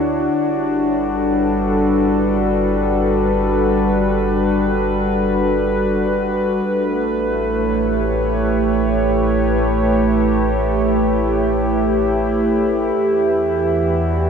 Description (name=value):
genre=ambient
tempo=free time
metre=none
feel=none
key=G lydian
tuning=A4 = 442 Hz
part: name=warbly tape-like pad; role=sustained chords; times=0.0-14.3 s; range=D3 to D5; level=-16 LUFS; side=equal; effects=chorus, built-in reverb
part: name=warm sub bass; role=bass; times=0.0-14.3 s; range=G1 to E2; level=-25 LUFS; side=equal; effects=none
room=wet cathedral reverb, RT60 6.1 s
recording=worn, warbling old tape, cassette tape, warbly pitch drift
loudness=-15 LUFS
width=side -6 dB against mid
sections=0.0-14.3 A section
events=none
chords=0.3 Gmaj7; 6.6 A7; 13.0 Em9